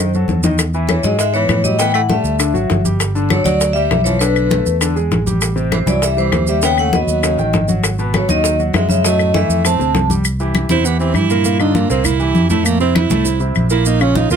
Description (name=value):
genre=Afro-Cuban jazz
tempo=199 BPM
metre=4/4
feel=straight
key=unclear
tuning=A4 = 440 Hz
part: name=vibraphone with medium hard mallets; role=melody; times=0.0-10.1 s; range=B4 to A5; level=-18 LUFS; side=left 3 dB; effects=none
part: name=warm concert grand piano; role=accompaniment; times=0.0-14.4 s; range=A2 to G5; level=-21 LUFS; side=left 1 dB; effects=none
part: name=fingered electric bass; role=bass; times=0.0-14.4 s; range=G1 to A2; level=-18 LUFS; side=right 1 dB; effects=none
part: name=congas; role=percussion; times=0.1-14.3 s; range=none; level=-20 LUFS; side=left 2 dB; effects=none
part: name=maracas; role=percussion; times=0.1-14.4 s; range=none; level=-25 LUFS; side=right 8 dB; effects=none
part: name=bongos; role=percussion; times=0.3-10.1 s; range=none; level=-23 LUFS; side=left 5 dB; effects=none
part: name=claves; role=percussion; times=0.6-14.2 s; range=none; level=-23 LUFS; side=left 10 dB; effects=none
part: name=warm tenor saxophone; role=second line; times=0.9-14.4 s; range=D3 to F4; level=-20 LUFS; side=right 8 dB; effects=none
room=light reverb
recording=close, detailed microphones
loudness=-13 LUFS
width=side -7 dB against mid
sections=0.6-10.2 A section; 10.2-14.4 B section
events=drum fill 0.0-0.6; tenor saxophone solo 10.2-14.4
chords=0.0 B7b9 (rootless); 0.6 E6; 1.8 A5; 2.4 Dadd9; 3.0 Gmaj7; 4.2 Bm7; 4.8 E7; 5.4 Am7; 6.6 D#7alt; 7.8 G#m7; 9.0 F#m7; 9.6 Fadd9; 10.2 C; 11.5 Gm7; 12.1 C7; 12.7 Fmaj7; 13.9 Bbm